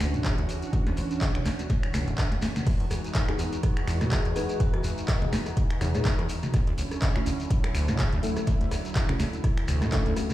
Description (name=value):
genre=acid house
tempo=124 BPM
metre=4/4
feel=swing 56% on 16ths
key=E mixolydian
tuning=A4 = 441 Hz
part: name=lush unison pad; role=sustained chords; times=0.0-10.3 s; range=D3 to F#4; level=-34 LUFS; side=right 1 dB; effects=chorus, phaser, sidechain pumping
part: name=liquid acid bass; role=riff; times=0.0-10.1 s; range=D1 to D#3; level=-30 LUFS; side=equal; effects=chorus, cassette tape, tape echo
part: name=booming analog drum machine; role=drums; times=0.0-10.3 s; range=crash cymbal, finger snaps, handclaps, hi-hat, rim click, snare drum, toms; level=-32 LUFS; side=equal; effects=overdrive
part: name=dusty soul sampler-style drum kit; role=drums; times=0.0-10.3 s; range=hi-hat, snare drum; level=-49 LUFS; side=equal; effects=none
part: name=shekere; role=percussion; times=0.0-10.3 s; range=none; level=-43 LUFS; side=left 3 dB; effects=none
part: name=electronic kick drum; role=drums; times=0.2-10.0 s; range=none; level=-27 LUFS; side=equal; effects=none
part: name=deep mellow chord stab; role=stabs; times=3.3-10.3 s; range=A3 to C#5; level=-34 LUFS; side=left 2 dB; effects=chorus, tape echo
part: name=vibraphone with medium mallets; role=melody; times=4.1-4.8 s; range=F#4 to G#4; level=-36 LUFS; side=left 4 dB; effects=ping-pong delay
room=light reverb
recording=played on a big sound system in a bare room, large studio reverb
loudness=-24 LUFS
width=side -14 dB against mid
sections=0.0-2.7 A section; 2.7-10.3 B section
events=drum fill 2.3-2.7; band accent 2.5; drop 2.7-10.3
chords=0.0 Dmaj9; 2.7 Emaj9; 6.5 Dmaj9